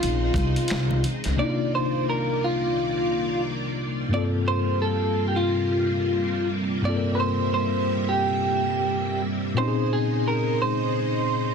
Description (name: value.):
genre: R&B, neo-soul.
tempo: 88 BPM.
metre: 4/4.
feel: swing 58% on 16ths.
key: unclear.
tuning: A4 = 437 Hz.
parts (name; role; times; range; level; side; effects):
electric guitar through a small old amp; melody; 0.0-11.5 s; F4 to D5; -25 LUFS; right 2 dB; tremolo, slapback echo.
mellow tine electric piano; accompaniment; 0.0-11.5 s; G2 to Bb4; -27 LUFS; left 3 dB; medium stereo tremolo.
string machine, full ensemble; sustained chords; 0.0-11.5 s; C2 to E5; -29 LUFS; right 1 dB; ensemble chorus.
upright bass; bass; 0.0-1.4 s; Bb1 to Db2; -24 LUFS; equal; none.
dusty soul sampler-style drum kit; drums; 0.0-1.4 s; finger snaps, hi-hat, kick drum, snare drum; -29 LUFS; equal; none.
congas; percussion; 0.0-1.2 s; none; -35 LUFS; right 3 dB; none.
room: light reverb.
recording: dense, heavily limited modern master.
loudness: -22 LUFS.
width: side -6 dB against mid.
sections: 0.0-4.1 A section; 4.1-11.5 A section.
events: none.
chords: 0.0 Bbm11; 1.4 Cm11; 4.1 Gm11; 9.6 Bbm11.